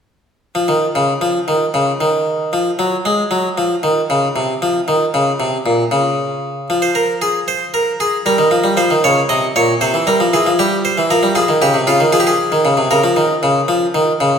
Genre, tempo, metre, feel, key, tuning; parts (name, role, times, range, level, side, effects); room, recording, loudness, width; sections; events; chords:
classical, baroque-style two-part invention for harpsichord; 77 BPM (dotted quarters); 12/8; straight; A4 = 439 Hz
harpsichord; solo; 0.6-14.4 s; Bb2 to Eb5; -13 LUFS; equal
wet recital hall reverb, RT60 1.5 s; -13 LUFS; side -7 dB against mid
0.4-14.4 A section
0.4 N.C.; 6.7 Fm; 8.3 Gdim; 9.8 C; 11.4 Fm; 12.9 Bbm/Db